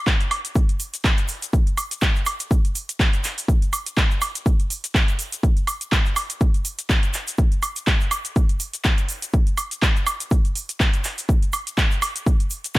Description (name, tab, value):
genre	house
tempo	123 BPM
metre	4/4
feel	swing 56% on 16ths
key	none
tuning	none
part	electronic kick drum	drums	0.1-12.8 s	none	-19 LUFS	equal	none
part	house drum kit	drums	0.1-12.8 s	handclaps, hi-hat, shaker, woodblock	-24 LUFS	right 1 dB	sidechain pumping on hats, sidechain pumping on perc
part	egg shaker	percussion	0.6-12.8 s	none	-34 LUFS	equal	none
room	digital ambience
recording	none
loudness	-19 LUFS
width	side -19 dB against mid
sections	0.0-12.8 A section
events	none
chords	none